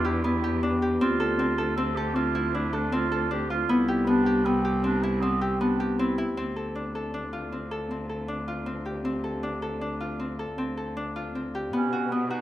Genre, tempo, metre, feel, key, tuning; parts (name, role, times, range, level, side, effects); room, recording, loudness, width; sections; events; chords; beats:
contemporary instrumental, chamber music in an uneven meter; 157 BPM; 7/4; straight; D dorian; A4 = 440 Hz
clear clarinet; second line; 0.0-6.4, 11.7-12.4 s; B3 to A4; -29 LUFS; right 5 dB
Celtic harp; arpeggios; 0.0-12.4 s; B3 to A4; -26 LUFS; left 1 dB
warm cello; bass; 0.0-12.4 s; C2 to B2; -32 LUFS; equal
moderate recital hall reverb, RT60 1.4 s; -25 LUFS; side -13 dB against mid
0.0-6.4 A section; 6.4-12.4 B section
0.0 Em7; 1.0 Dm7; 3.7 Cmaj7; 6.4 Dm7; 11.7 B7(no3)
0.24 0.62 | 1.01 1.39 1.77 2.16 2.54 2.92 3.31 | 3.69 4.07 4.46 4.84 5.22 5.60 5.99 | 6.37 6.75 7.13 7.52 7.90 8.28 8.67 | 9.05 9.43 9.81 10.20 10.58 10.96 11.35 | 11.73 12.11